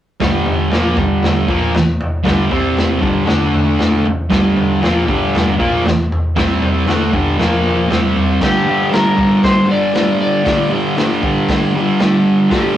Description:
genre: garage rock duo or trio.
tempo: 117 BPM.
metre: 4/4.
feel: straight.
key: G minor.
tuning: A4 = 440 Hz.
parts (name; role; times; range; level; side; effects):
thick fuzz guitar; riff; 0.2-12.8 s; G2 to D4; -14 LUFS; equal; distortion.
crunchy breakbeat drum kit; drums; 0.2-12.6 s; crash cymbal, hi-hat, kick drum, snare drum, toms; -17 LUFS; equal; none.
electric slide guitar; melody; 8.4-12.8 s; G4 to D5; -17 LUFS; left 2 dB; none.
room: wet small room reverb, RT60 0.5 s.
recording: rough rehearsal-room recording, warm saturation, cassette tape.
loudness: -12 LUFS.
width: side -11 dB against mid.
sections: 0.2-8.4 A section; 8.4-12.8 B section.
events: none.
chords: 0.2 Gm; 2.5 C5; 3.0 G5; 3.3 D5; 4.1 Gm; 6.4 C5; 6.9 G5; 7.4 Bb5; 7.9 C5; 8.4 G5.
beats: | 0.20 0.72 1.23 1.74 | 2.26 2.77 3.29 3.80 | 4.31 4.83 5.34 5.85 | 6.36 6.88 7.39 7.90 | 8.41 8.93 9.44 9.95 | 10.47 10.98 11.49 12.01 | 12.52.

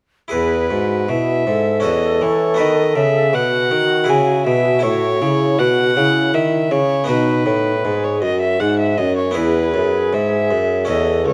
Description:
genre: classical, baroque-style sonata movement with continuo.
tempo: 80 BPM.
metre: 3/4.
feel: straight.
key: E major.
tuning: A4 = 440 Hz.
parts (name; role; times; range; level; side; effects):
warm violin; melody; 0.3-11.3 s; B4 to G#5; -22 LUFS; equal; none.
mellow hollow silver concert flute; second line; 0.3-11.3 s; C#4 to A4; -22 LUFS; equal; none.
harpsichord; accompaniment; 0.3-11.3 s; C#2 to B4; -24 LUFS; equal; none.
mellow bassoon; bass; 0.3-11.3 s; C#2 to E3; -22 LUFS; equal; none.
room: moderate scoring stage reverb, RT60 1.6 s.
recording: none.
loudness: -17 LUFS.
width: mono.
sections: 0.3-11.3 A section.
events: none.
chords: 0.3 E; 1.9 F#m7/E; 2.6 B; 4.1 C#m; 4.8 A; 7.1 B; 9.4 E.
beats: | 0.33 1.10 1.85 | 2.60 3.34 4.09 | 4.83 5.59 6.34 | 7.09 7.85 8.61 | 9.37 10.14 10.89.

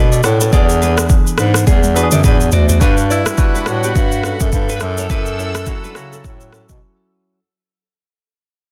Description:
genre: afrobeats.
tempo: 105 BPM.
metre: 4/4.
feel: swing 58% on 16ths.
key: unclear.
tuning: A4 = 441 Hz.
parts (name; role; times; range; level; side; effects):
barky tine electric piano; accompaniment; 0.0-7.4 s; B2 to F#5; -24 LUFS; equal; none.
nylon-string guitar; riff; 0.0-6.7 s; B3 to D5; -25 LUFS; equal; tape echo.
warm bass clarinet; bass; 0.0-6.8 s; D2 to C#3; -19 LUFS; equal; none.
afro-pop drum kit; drums; 0.1-6.8 s; kick drum, rim click, shaker, toms; -17 LUFS; equal; soft clipping on snare.
lush unison pad; sustained chords; 2.8-7.4 s; G3 to E6; -33 LUFS; equal; chorus, phaser.
breathy alto saxophone; melody; 3.1-6.8 s; E4 to B4; -26 LUFS; equal; none.
room: small room ambience.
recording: dense, heavily limited modern master.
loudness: -14 LUFS.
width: mono.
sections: 0.0-2.8 A section; 2.8-7.4 B section.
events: drum fill 1.7-2.8; fade-out 2.8-7.4; break 6.8-7.4.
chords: 0.0 Bm7; 0.5 E7; 2.8 Gmaj7; 4.8 F#m7.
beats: | 0.53 1.10 1.67 2.24 | 2.81 3.38 3.96 4.53 | 5.10 5.67 6.24 6.81.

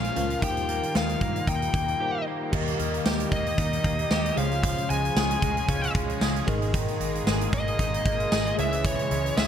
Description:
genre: 1980s-style pop.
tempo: 114 BPM.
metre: 4/4.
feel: swing 55% on 16ths.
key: unclear.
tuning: A4 = 439 Hz.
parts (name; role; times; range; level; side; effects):
bluesy overdriven lead guitar; melody; 0.0-9.5 s; Db5 to Ab5; -29 LUFS; left 1 dB; distortion, ping-pong delay.
mellow tine electric piano; accompaniment; 0.0-9.5 s; Ab2 to F5; -32 LUFS; left 3 dB; fast stereo tremolo.
sweeping resonant pad; sustained chords; 0.0-9.5 s; Db3 to Ab4; -36 LUFS; equal; chorus.
direct-recorded clean electric guitar; riff; 0.0-9.5 s; Eb3 to Ab4; -34 LUFS; right 5 dB; ensemble chorus, ping-pong delay.
vintage muted fingered electric bass; bass; 0.0-9.5 s; Ab1 to G2; -31 LUFS; equal; none.
big rock drum kit; drums; 0.0-9.5 s; crash cymbal, hi-hat, kick drum, snare drum, tambourine; -27 LUFS; equal; gated reverb.
cranked stack guitar; accompaniment; 2.5-9.5 s; Ab2 to Eb4; -38 LUFS; left 1 dB; overdrive, analog chorus.
room: light reverb, studio reverb.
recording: none.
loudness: -23 LUFS.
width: side -9 dB against mid.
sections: 0.0-2.5 A section; 2.5-9.5 B section.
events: break 2.0-2.5.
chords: 0.4 Ebadd9; 2.5 Eb; 4.4 Db; 6.5 Absus2; 8.6 Dbm.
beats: | 0.42 0.95 1.48 2.00 | 2.53 3.06 3.58 4.11 | 4.64 5.16 5.69 6.21 | 6.74 7.27 7.79 8.32 | 8.85 9.37.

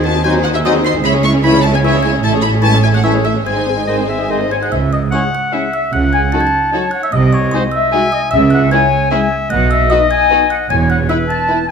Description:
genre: cinematic, playful, whimsical film cue.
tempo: 151 BPM.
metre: 3/4.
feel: straight.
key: C# minor.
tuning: A4 = 437 Hz.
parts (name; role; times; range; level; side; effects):
music box; melody; 0.0-11.7 s; B#5 to C#7; -24 LUFS; right 1 dB; none.
warm studio violin section; melody; 0.0-11.6 s; G#4 to C#6; -22 LUFS; left 3 dB; none.
warm studio violin section; second line; 0.0-11.6 s; E4 to E5; -22 LUFS; left 3 dB; none.
dark studio viola section; accompaniment; 0.0-11.6 s; G#3 to B#4; -21 LUFS; equal; none.
rich studio cello section; bass; 0.0-11.0 s; E2 to D#3; -20 LUFS; right 3 dB; none.
warm studio double bass section; bass; 0.0-11.0 s; E1 to D#2; -18 LUFS; right 4 dB; none.
small flute group; second line; 0.2-11.7 s; B#4 to A5; -19 LUFS; left 6 dB; none.
mellow bassoon; accompaniment; 0.2-4.4 s; D#3 to F#3; -22 LUFS; right 1 dB; none.
bright clarinet; second line; 0.3-11.6 s; D#4 to G#5; -20 LUFS; left 4 dB; none.
warm oboe; second line; 0.3-11.7 s; B#4 to A5; -22 LUFS; right 1 dB; none.
mellow French horn section; sustained chords; 0.3-11.6 s; F#3 to F#4; -24 LUFS; left 5 dB; none.
room: moderate scoring stage reverb, RT60 1.5 s.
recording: none.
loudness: -11 LUFS.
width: side -6 dB against mid.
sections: 0.0-4.7 A section; 4.7-11.7 B section.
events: none.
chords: 0.0 G#7/D#; 1.0 C#m; 2.2 Amaj7; 3.5 G#; 4.7 C#m; 5.9 D#m7b5/C#; 7.1 G#7/B#; 8.3 C#m; 9.5 B; 10.7 E5.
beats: 0.26 0.65 | 1.05 1.44 1.84 | 2.24 2.64 3.04 | 3.46 3.88 4.30 | 4.72 5.13 5.53 | 5.93 6.33 6.73 | 7.13 7.53 7.93 | 8.33 8.72 9.12 | 9.51 9.91 10.31 | 10.70 11.10 11.49.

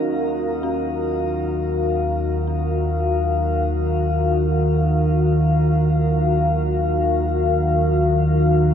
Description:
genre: dark ambient drone.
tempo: free time.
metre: none.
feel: none.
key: unclear.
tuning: A4 = 435 Hz.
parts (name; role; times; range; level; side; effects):
deep dark ambient pad; sustained chords; 0.0-8.7 s; Eb4 to F5; -21 LUFS; left 1 dB; chorus, built-in reverb, shimmer reverb.
deep rumbling drone; drone; 0.8-8.7 s; Eb2 to Eb3; -20 LUFS; equal; built-in reverb.
room: wet cathedral reverb, RT60 6.5 s.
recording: in a vast, echoing space.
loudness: -18 LUFS.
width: side -8 dB against mid.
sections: 0.0-8.7 A section.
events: none.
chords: 0.0 Ebmadd9.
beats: free time.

